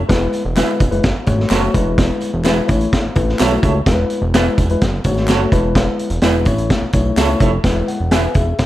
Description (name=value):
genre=uptempo 1960s-style soul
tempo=127 BPM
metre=4/4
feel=straight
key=E major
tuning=A4 = 445 Hz
part: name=fat analog bass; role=bass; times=0.0-8.7 s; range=E1 to C#2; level=-19 LUFS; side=equal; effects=none
part: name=tine electric piano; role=accompaniment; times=0.1-8.7 s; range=G#3 to G#5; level=-20 LUFS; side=left 3 dB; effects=none
part: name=vintage drum kit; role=drums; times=0.1-8.7 s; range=hi-hat, kick drum, snare drum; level=-17 LUFS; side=equal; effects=none
part: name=tambourine and handclaps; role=percussion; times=0.1-8.7 s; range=none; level=-30 LUFS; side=equal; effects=none
part: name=electric guitar through a small old amp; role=stabs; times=0.6-8.2 s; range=B3 to C#5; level=-23 LUFS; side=right 6 dB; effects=analog delay
room=light reverb, studio reverb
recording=dark, warm production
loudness=-13 LUFS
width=side -14 dB against mid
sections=0.0-8.7 A section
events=none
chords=0.1 E; 1.0 F#m; 1.7 E; 2.7 A; 3.9 E; 4.8 F#m; 5.5 E; 6.5 A; 7.6 E